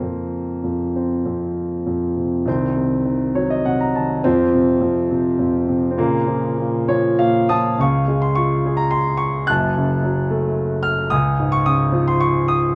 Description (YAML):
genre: classical, lyrical solo piano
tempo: 95-115 BPM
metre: 3/4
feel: rubato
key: Bb harmonic minor, Db major from 7.8 s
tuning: A4 = 436 Hz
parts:
  - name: warm concert grand piano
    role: solo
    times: 0.0-12.8 s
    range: Gb1 to Gb6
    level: -19 LUFS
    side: equal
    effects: none
room: moderate recital hall reverb, RT60 1.4 s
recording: dark, warm production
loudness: -19 LUFS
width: mono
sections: 0.0-7.8 A section; 7.8-12.8 B section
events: grand piano fill 3.1-4.2, 6.6-7.8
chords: 0.0 F5; 2.5 Cdim; 4.2 F5; 6.0 Bbm; 7.8 Db; 9.5 Gbm; 11.1 Db